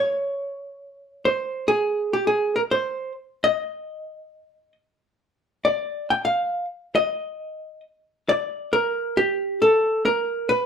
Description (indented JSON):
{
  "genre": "jazz",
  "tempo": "136 BPM",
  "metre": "4/4",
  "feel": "swing 68% on 8ths",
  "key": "unclear",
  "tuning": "A4 = 441 Hz",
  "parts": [
    { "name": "vintage hollow-body jazz guitar", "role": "solo", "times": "0.0-10.7 s", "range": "G4 to G5", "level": "-21 LUFS", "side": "equal", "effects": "none" }
  ],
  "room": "moderate studio reverb, RT60 0.7 s",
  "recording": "dark, warm production",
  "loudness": "-21 LUFS",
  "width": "side -7 dB against mid",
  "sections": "0.0-10.7 A section",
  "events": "none",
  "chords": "none",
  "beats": "| 0.06 0.50 0.94 1.38 | 1.82 2.26 2.70 3.14 | 3.58 4.02 4.46 4.90 | 5.34 5.78 6.22 6.67 | 7.11 7.55 7.99 8.43 | 8.87 9.31 9.75 10.19 | 10.63"
}